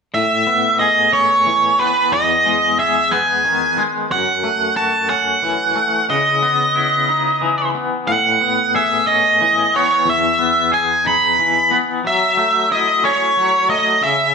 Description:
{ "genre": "rock", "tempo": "60 BPM (dotted quarters)", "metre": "6/8", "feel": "straight", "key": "unclear", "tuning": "A4 = 443 Hz", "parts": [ { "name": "octave-fuzz lead guitar", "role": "melody", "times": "0.1-14.3 s", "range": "B4 to B5", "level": "-14 LUFS", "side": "right 1 dB", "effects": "distortion" }, { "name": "twangy electric guitar", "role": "arpeggios", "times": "0.1-14.3 s", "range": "E2 to G#4", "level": "-20 LUFS", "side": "left 4 dB", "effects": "tremolo" } ], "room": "wet stone room reverb, RT60 1.0 s", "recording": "band playing live in one room", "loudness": "-13 LUFS", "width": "side -5 dB against mid", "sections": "0.1-14.3 A section", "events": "none", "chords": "0.1 Amaj9; 2.1 Emaj7; 4.1 F#m7; 6.1 C#m9; 8.1 Amaj9; 10.1 Emaj7; 12.0 F#m7" }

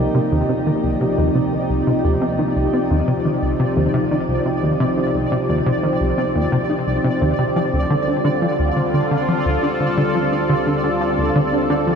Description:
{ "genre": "ambient, sequencer-driven space music", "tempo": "87 BPM", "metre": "4/4", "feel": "straight", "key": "unclear", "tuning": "A4 = 440 Hz", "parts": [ { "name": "sweeping resonant pad", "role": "sustained chords", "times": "0.0-12.0 s", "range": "C3 to A4", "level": "-19 LUFS", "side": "equal", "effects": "chorus, shimmer reverb" }, { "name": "plucky analog bass", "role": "riff", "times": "0.0-11.9 s", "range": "C2 to F3", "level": "-20 LUFS", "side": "equal", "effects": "lush chorus, cassette tape, ping-pong delay" }, { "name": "fat analog bass", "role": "bass", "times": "0.0-12.0 s", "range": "C2 to D2", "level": "-40 LUFS", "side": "equal", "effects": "none" }, { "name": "pulsing gated texture", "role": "texture", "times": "0.0-12.0 s", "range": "D5", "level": "-26 LUFS", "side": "right 3 dB", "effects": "chorus, built-in reverb, shimmer reverb" } ], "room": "wet lush hall reverb, RT60 2.7 s", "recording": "dreamy mix soaked in reverb", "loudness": "-16 LUFS", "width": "side -6 dB against mid", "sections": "0.0-12.0 A section", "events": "none", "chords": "0.0 Cmadd9; 7.6 Dm" }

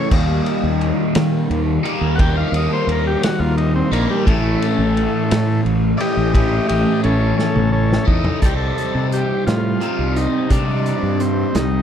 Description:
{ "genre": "psychedelic rock", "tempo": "58 BPM (dotted quarters)", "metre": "6/8", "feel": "straight", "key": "C dorian", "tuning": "A4 = 440 Hz", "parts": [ { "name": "combo organ", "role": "melody", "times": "0.0-11.8 s", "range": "G3 to G5", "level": "-22 LUFS", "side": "left 2 dB", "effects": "slapback echo" }, { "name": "overdriven semi-hollow guitar", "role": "riff", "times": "0.0-11.8 s", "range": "A2 to E4", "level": "-19 LUFS", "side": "equal", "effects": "phaser" }, { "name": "fuzz fingered electric bass", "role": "bass", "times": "0.1-11.8 s", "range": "A1 to Eb3", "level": "-20 LUFS", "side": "equal", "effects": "overdrive" }, { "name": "vintage drum kit", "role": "drums", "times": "0.1-11.7 s", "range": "crash cymbal, hi-hat, kick drum, ride cymbal, snare drum, toms", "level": "-22 LUFS", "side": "equal", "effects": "none" } ], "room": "little or no reverb", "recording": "none", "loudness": "-15 LUFS", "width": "side -9 dB against mid", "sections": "0.0-8.4 A section; 8.4-11.8 B section", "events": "transistor combo organ solo 0.0-8.4; drum fill 7.4-8.4", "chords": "0.1 Eb; 4.3 A; 8.4 Cm" }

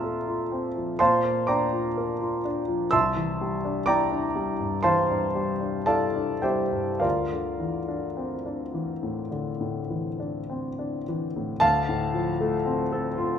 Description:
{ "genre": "classical, impressionist solo piano", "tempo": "50-64 BPM", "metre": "4/4", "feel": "rubato", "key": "D minor", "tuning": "A4 = 437 Hz", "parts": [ { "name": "warm concert grand piano", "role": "solo", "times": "0.0-13.4 s", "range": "C2 to F6", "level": "-24 LUFS", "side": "equal", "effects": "none" } ], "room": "moderate recital hall reverb, RT60 1.4 s", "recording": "minimal, uncompressed stereo recording", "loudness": "-24 LUFS", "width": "side -8 dB against mid", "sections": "0.0-11.6 A section; 11.6-13.4 B section", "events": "none", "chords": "0.0 Fmaj7/Bb; 1.0 Gm7/Bb; 2.9 Cadd9; 7.0 Dm9; 11.6 Dm7" }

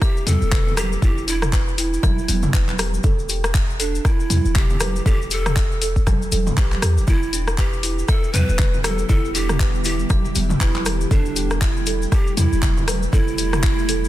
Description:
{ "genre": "afro house", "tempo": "119 BPM", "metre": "4/4", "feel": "swing 58% on 16ths", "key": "E minor", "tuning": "A4 = 440 Hz", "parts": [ { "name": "breathy large pan pipes", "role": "melody", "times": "0.0-14.1 s", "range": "D4 to B4", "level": "-28 LUFS", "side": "right 4 dB", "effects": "tape echo" }, { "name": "kalimba", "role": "arpeggios", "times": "0.0-14.0 s", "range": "B3 to A5", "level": "-30 LUFS", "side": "right 3 dB", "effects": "sidechain pumping, tape echo" }, { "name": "deep house drum kit", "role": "drums", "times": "0.0-14.0 s", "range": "handclaps, hi-hat, rim click, toms", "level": "-25 LUFS", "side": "left 2 dB", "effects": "overdrive" }, { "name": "electronic kick drum", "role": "drums", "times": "0.0-13.8 s", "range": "none", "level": "-18 LUFS", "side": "equal", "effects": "overdrive" }, { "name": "cabasa", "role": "percussion", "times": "0.0-14.1 s", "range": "none", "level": "-32 LUFS", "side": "left 6 dB", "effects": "none" }, { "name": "warm 808-style bass", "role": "bass", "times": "0.3-14.1 s", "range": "E1 to E2", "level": "-23 LUFS", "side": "equal", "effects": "sidechain pumping" }, { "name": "congas", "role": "percussion", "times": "0.3-13.2 s", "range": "none", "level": "-29 LUFS", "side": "right 3 dB", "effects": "none" }, { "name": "ethereal airy pad", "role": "sustained chords", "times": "8.0-14.1 s", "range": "C3 to G4", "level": "-30 LUFS", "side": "equal", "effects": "ensemble chorus, built-in reverb, phaser, sidechain pumping" } ], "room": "studio ambience", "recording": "dense, heavily limited modern master", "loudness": "-17 LUFS", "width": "side -14 dB against mid", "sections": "0.0-14.1 A section", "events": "none", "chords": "0.0 Em; 3.0 A5/E; 7.1 Em7; 11.1 Am7/E" }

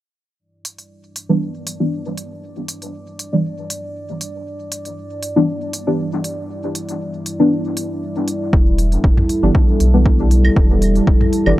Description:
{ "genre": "dub techno", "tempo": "118 BPM", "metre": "4/4", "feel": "swing 53% on 16ths", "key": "E minor", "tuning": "A4 = 440 Hz", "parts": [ { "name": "dark analog pad", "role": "sustained chords", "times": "1.2-11.6 s", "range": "G3 to D5", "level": "-23 LUFS", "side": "equal", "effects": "chorus, phaser, sidechain pumping" }, { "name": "electronic hi-hat", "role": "drums", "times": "0.7-11.4 s", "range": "none", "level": "-26 LUFS", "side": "right 1 dB", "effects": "none" }, { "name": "deep mellow chord stab", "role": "stabs", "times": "1.3-11.6 s", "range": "E3 to D4", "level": "-20 LUFS", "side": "equal", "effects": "chorus, phaser, sidechain pumping, dub echo" }, { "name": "pure sine sub bass", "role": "bass", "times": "8.5-11.5 s", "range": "E1 to B1", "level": "-15 LUFS", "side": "equal", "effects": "transformer saturation, sidechain pumping" }, { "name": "electronic kick drum", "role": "drums", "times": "8.5-11.2 s", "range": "none", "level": "-14 LUFS", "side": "equal", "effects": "none" }, { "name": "electronic toms and claves", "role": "percussion", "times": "9.2-11.6 s", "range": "none", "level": "-23 LUFS", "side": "right 1 dB", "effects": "sidechain pumping on toms, sidechain pumping on perc" } ], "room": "digital ambience", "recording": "dry, gritty hardware recording", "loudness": "-15 LUFS", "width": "side -16 dB against mid", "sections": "0.4-11.6 A section", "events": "filter sweep on synth stab 0.4-11.6", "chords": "0.4 Em7" }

